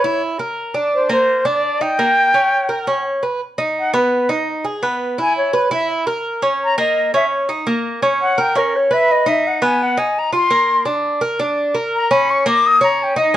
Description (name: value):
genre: latin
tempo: 169 BPM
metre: 4/4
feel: straight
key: unclear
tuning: A4 = 439 Hz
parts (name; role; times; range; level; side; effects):
- silver concert flute; melody; 0.0-13.4 s; A#4 to D#6; -16 LUFS; left 1 dB; plate reverb
- Cuban tres; arpeggios; 0.0-13.4 s; A#3 to B4; -17 LUFS; right 1 dB; none
room: moderate studio reverb, RT60 0.7 s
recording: worn, warbling old tape, cassette tape, warbly pitch drift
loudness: -14 LUFS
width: side -12 dB against mid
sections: 0.0-3.4 A section; 3.4-13.4 B section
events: flute solo 3.4-13.4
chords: 0.0 E5; 0.6 A#; 2.0 A#m6; 3.4 G#m; 4.8 C#m7; 6.2 A#madd11; 7.7 A#m; 9.1 B6; 10.5 A#; 11.9 D#5